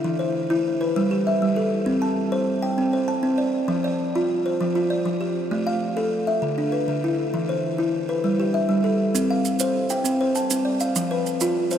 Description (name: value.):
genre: southern african traditional, mbira-style interlocking cycle.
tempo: 132 BPM (dotted quarters).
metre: 12/8.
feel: straight.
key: C major.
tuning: A4 = 440 Hz.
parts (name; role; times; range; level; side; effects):
buzzing kalimba; arpeggios; 0.0-11.8 s; D3 to A5; -20 LUFS; equal; none.
maracas; percussion; 9.2-11.8 s; none; -30 LUFS; right 9 dB; none.
room: wet huge ambient reverb, RT60 8.9 s.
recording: dreamy mix soaked in reverb.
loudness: -20 LUFS.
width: side -9 dB against mid.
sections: 0.0-9.1 A section; 9.1-11.8 A section.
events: none.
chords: 0.0 E5; 1.0 G; 1.9 C5; 3.7 F5; 5.5 A5; 6.4 Bmadd11/D; 7.3 E5; 8.2 G; 9.1 C5; 11.0 F5.